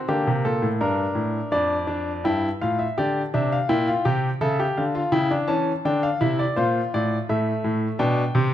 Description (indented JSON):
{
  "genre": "classical, baroque-style 3-part fugue for grand piano",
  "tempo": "84 BPM",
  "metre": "4/4",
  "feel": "straight",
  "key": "D minor",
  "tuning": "A4 = 439 Hz",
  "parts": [
    { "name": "clear baby grand piano", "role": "solo", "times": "0.0-8.5 s", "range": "F2 to A5", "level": "-20 LUFS", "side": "left 1 dB", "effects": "none" }
  ],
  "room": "moderate scoring stage reverb, RT60 1.5 s",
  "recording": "close, detailed microphones",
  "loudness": "-20 LUFS",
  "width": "side -11 dB against mid",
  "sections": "0.0-1.5 A section; 1.5-8.5 B section",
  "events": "none",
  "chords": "0.1 Gm; 1.5 Dm/F; 3.0 Em7b5; 4.4 A7/C#; 5.9 Dm; 7.3 Am"
}